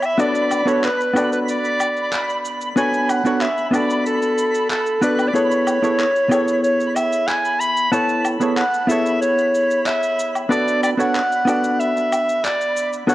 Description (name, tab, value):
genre	sunset chillout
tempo	93 BPM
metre	4/4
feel	straight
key	unclear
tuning	A4 = 440 Hz
part	warm soprano saxophone	melody	0.0-13.1 s	A4 to B5	-19 LUFS	equal	analog delay
part	hollow-body jazz guitar	accompaniment	0.0-13.1 s	B3 to D5	-21 LUFS	equal	auto-pan, cassette tape
part	electronic woodblock, shaker and handclaps	drums	0.0-13.1 s	none	-27 LUFS	equal	cassette tape
part	twinkling granular texture	texture	0.0-13.1 s	B5	-30 LUFS	right 1 dB	built-in reverb, cassette tape
room	moderate lush hall reverb, RT60 2.3 s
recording	home recording on cassette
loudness	-16 LUFS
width	side -16 dB against mid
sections	0.0-13.1 A section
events	none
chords	0.2 Bm7; 5.3 Amaj7; 10.5 Bm7